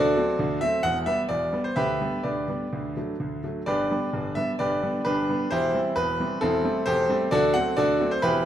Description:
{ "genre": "classical-period piano sonatina", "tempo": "131 BPM", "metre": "4/4", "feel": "rubato", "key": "G major", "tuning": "A4 = 441 Hz", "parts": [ { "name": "bright concert grand piano", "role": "solo", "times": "0.0-8.5 s", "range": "E1 to F#5", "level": "-22 LUFS", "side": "equal", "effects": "none" } ], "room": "moderate recital hall reverb, RT60 1.3 s", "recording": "minimal, uncompressed stereo recording", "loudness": "-23 LUFS", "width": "side -10 dB against mid", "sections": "0.0-8.5 A section", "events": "none", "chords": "0.0 D7; 0.8 Em; 1.8 G/D; 2.7 D; 3.7 G; 5.5 C/E; 6.4 Am7/E; 7.3 D7" }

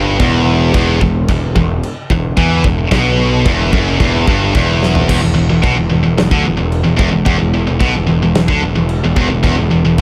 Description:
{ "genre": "heavy metal", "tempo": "110 BPM", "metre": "4/4", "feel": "straight", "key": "E minor", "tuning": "A4 = 440 Hz", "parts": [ { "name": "high-gain distorted guitar", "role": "riff", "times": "0.0-10.0 s", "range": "E2 to E3", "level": "-16 LUFS", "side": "equal", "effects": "distortion" }, { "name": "fuzz picked electric bass", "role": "bass", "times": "0.0-10.0 s", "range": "E1 to E2", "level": "-18 LUFS", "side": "equal", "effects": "overdrive" }, { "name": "big rock drum kit", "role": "drums", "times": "0.2-10.0 s", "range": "china cymbal, crash cymbal, kick drum, snare drum, toms", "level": "-19 LUFS", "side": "equal", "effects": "none" } ], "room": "small room ambience", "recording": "none", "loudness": "-13 LUFS", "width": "mono", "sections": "0.0-5.1 A section; 5.1-10.0 B section", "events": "half time 0.0-5.1; drum fill 4.8", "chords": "0.0 Em; 5.1 E5" }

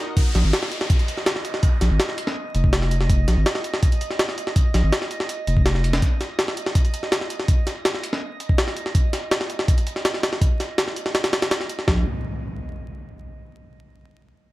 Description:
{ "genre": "drum and bass, jungle", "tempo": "164 BPM", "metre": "4/4", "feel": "straight", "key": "unclear", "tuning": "A4 = 440 Hz", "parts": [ { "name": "jungle sampler-style drum kit", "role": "drums", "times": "0.2-12.0 s", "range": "hi-hat, kick drum, snare drum", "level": "-20 LUFS", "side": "equal", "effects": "none" }, { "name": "downlifter and impact", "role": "sound effects", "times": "0.2-3.1, 12.0-13.3 s", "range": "none", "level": "-32 LUFS", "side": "equal", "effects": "none" }, { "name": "drifting glass-harmonics texture", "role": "texture", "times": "0.7-11.9 s", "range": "Eb5", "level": "-35 LUFS", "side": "right 5 dB", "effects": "chorus, built-in reverb" }, { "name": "saturated sub bass", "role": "bass", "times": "0.3-6.0, 11.9-12.0 s", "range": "F1 to Bb1", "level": "-19 LUFS", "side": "equal", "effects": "none" } ], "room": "little or no reverb", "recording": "vinyl crackle", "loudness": "-19 LUFS", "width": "side -18 dB against mid", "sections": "0.2-11.9 A section; 11.9-13.3 B section", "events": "none", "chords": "none" }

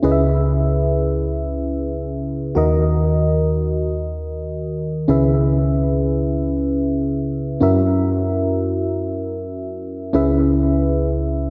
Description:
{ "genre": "pop", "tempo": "free time", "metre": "none", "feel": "none", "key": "C# dorian", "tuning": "A4 = 440 Hz", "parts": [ { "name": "mellow FM electric piano", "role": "solo", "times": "0.0-11.5 s", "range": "C#2 to E5", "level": "-19 LUFS", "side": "equal", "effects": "chorus, analog delay" } ], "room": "wet lush hall reverb, RT60 2.9 s", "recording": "dreamy mix soaked in reverb", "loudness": "-19 LUFS", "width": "mono", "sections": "0.0-11.5 A section", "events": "none", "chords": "0.0 C#m7; 2.6 D#m; 5.1 C#m7; 7.6 F#7; 10.1 C#m7" }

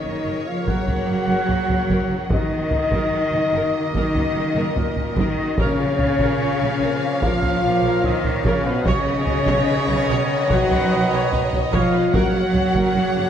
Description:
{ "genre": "cinematic, epic orchestral film score", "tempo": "73 BPM", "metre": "4/4", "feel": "straight", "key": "Eb minor", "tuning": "A4 = 444 Hz", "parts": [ { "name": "warm symphonic violin section", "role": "melody", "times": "0.0-13.3 s", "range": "Db5 to Gb5", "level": "-30 LUFS", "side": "left 5 dB", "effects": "none" }, { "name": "bright flute section", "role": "second line", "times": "0.0-13.3 s", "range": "Bb4 to Gb5", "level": "-31 LUFS", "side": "left 4 dB", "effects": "none" }, { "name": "warm symphonic violin section", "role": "second line", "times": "0.0-13.3 s", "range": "Bb4 to Db5", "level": "-32 LUFS", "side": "left 2 dB", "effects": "none" }, { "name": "dark French horn section", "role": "sustained chords", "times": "0.0-13.3 s", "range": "Bb3 to Gb4", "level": "-25 LUFS", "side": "left 4 dB", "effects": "none" }, { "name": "warm trombone section", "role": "sustained chords", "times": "0.0-13.3 s", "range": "Db3 to B3", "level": "-32 LUFS", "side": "right 4 dB", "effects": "none" }, { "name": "warm woodwind section", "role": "sustained chords", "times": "0.0-13.3 s", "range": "Bb3 to F5", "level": "-32 LUFS", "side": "equal", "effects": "none" }, { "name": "clear trumpet section", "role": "stabs", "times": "0.0-13.3 s", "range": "Bb4 to Gb5", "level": "-28 LUFS", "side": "right 2 dB", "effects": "none" }, { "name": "rich symphonic cello section", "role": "bass", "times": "0.0-13.3 s", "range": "Bb2 to Gb3", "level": "-24 LUFS", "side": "right 2 dB", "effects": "none" }, { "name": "warm symphonic viola section", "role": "accompaniment", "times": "0.1-13.2 s", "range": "Db4 to C#5", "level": "-31 LUFS", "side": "right 1 dB", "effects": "none" }, { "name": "warm symphonic double bass section", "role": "bass", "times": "0.1-13.2 s", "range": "Gb1 to B1", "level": "-26 LUFS", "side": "right 4 dB", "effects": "none" }, { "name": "solo taiko drums", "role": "drums", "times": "0.7-13.3 s", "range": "none", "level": "-25 LUFS", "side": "equal", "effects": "none" } ], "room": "moderate concert hall reverb, RT60 2.3 s", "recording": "none", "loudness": "-17 LUFS", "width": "side -9 dB against mid", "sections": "0.0-13.3 A section", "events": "none", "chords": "0.0 Gb; 2.3 Ebm/Gb; 5.6 Bbm; 8.9 Badd9; 12.1 Gb" }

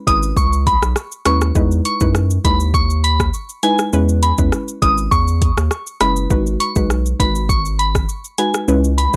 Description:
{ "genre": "dancehall", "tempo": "101 BPM", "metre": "4/4", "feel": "straight", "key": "G# minor", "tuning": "A4 = 439 Hz", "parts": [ { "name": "soft synth bell", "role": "melody", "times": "0.1-9.1 s", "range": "G#5 to D#6", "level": "-21 LUFS", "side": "equal", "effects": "chorus, phaser, analog delay" }, { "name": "soft round pluck", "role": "accompaniment", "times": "0.1-9.2 s", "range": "G#3 to B4", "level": "-23 LUFS", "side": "equal", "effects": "chorus" }, { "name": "round analog bass", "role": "bass", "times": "0.1-9.2 s", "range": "F#1 to F#2", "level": "-20 LUFS", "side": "equal", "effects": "none" }, { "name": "afro-pop drum kit", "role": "drums", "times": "0.1-9.2 s", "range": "hi-hat, kick drum, rim click, shaker", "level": "-22 LUFS", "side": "equal", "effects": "none" } ], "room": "little or no reverb", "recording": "dry, gritty hardware recording, transformer saturation, cassette tape", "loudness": "-17 LUFS", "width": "mono", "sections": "0.0-9.2 A section", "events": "none", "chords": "0.0 C#m7; 1.6 Emaj7; 3.9 C#m7; 6.3 G#m7" }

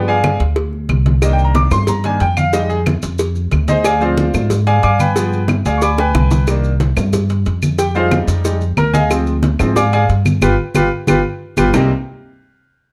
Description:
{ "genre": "latin, salsa", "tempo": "182 BPM", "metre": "4/4", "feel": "straight", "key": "C minor", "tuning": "A4 = 443 Hz", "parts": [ { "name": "bright concert grand piano", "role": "accompaniment", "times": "0.0-11.9 s", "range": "C3 to D6", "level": "-19 LUFS", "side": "equal", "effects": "none" }, { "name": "upright bass", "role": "bass", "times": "0.0-11.9 s", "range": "G1 to Ab2", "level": "-19 LUFS", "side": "equal", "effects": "none" }, { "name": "congas", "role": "percussion", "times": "0.1-11.8 s", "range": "none", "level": "-22 LUFS", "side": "equal", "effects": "none" }, { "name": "claves", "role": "percussion", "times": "0.2-11.8 s", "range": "none", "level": "-28 LUFS", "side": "equal", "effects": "none" }, { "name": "cowbell and bongos", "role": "percussion", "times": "0.2-11.8 s", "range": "none", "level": "-26 LUFS", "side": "equal", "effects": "none" }, { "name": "maracas", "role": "percussion", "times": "1.2-11.8 s", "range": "none", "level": "-35 LUFS", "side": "equal", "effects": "none" } ], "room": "moderate studio reverb, RT60 0.8 s", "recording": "dark, warm production", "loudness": "-15 LUFS", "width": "mono", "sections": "0.0-11.7 A section; 11.7-12.9 B section", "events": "grand piano solo 0.0-11.7; drum fill 6.0-6.5, 11.1-11.7; band accent 10.4-11.7", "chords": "0.0 G7(no3); 1.2 Cm7; 2.5 Fm7; 3.8 Dm7b5; 5.2 G7b9; 6.5 Cm7; 7.8 Fm7; 9.1 Dm7b5; 10.4 G7; 11.7 Cm7" }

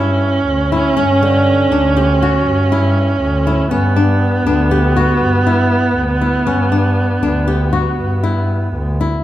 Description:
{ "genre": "contemporary instrumental, chamber music in an uneven meter", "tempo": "240 BPM (eighths)", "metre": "11/8", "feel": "straight", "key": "G lydian", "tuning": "A4 = 440 Hz", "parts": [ { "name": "rich viola", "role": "second line", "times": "0.0-9.0 s", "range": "B3 to C#4", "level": "-16 LUFS", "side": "right 2 dB", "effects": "none" }, { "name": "flamenco guitar", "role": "arpeggios", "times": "0.0-9.2 s", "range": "D3 to G4", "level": "-19 LUFS", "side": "left 4 dB", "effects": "none" }, { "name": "rich double bass", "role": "bass", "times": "0.0-9.2 s", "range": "D2 to G2", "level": "-16 LUFS", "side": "equal", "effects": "none" } ], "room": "wet recital hall reverb, RT60 1.3 s", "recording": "dark, warm production", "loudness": "-12 LUFS", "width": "side -13 dB against mid", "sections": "0.0-9.2 A section", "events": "none", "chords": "0.0 G6" }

